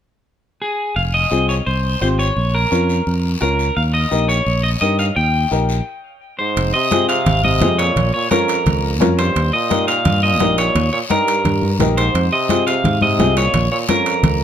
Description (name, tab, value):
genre	latin, cumbia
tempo	172 BPM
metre	4/4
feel	straight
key	F minor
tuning	A4 = 441 Hz
part	electric guitar at the edge of break-up	melody	0.6-14.4 s	Ab4 to G5	-19 LUFS	equal	spring reverb
part	fingered electric bass	bass	1.0-14.4 s	F1 to Ab2	-18 LUFS	equal	none
part	guiro	percussion	1.0-14.4 s	none	-31 LUFS	left 5 dB	none
part	warm upright piano	accompaniment	1.3-14.1 s	C4 to Bb4	-20 LUFS	left 3 dB	none
part	brilliant trombone	second line	6.4-14.4 s	F2 to C3	-24 LUFS	right 5 dB	none
part	timbales	percussion	6.6-14.4 s	none	-26 LUFS	right 10 dB	none
part	congas	percussion	6.9-14.4 s	none	-21 LUFS	left 1 dB	none
room	little or no reverb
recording	close, detailed microphones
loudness	-14 LUFS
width	side -9 dB against mid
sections	1.0-6.6 A section; 6.6-14.4 B section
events	stop 5.9-6.6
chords	0.0 N.C.; 1.0 Fm; 2.4 Bbm; 3.8 Eb; 6.6 Fm; 8.0 Bbm; 9.4 Eb; 12.1 Fm; 13.5 Bbm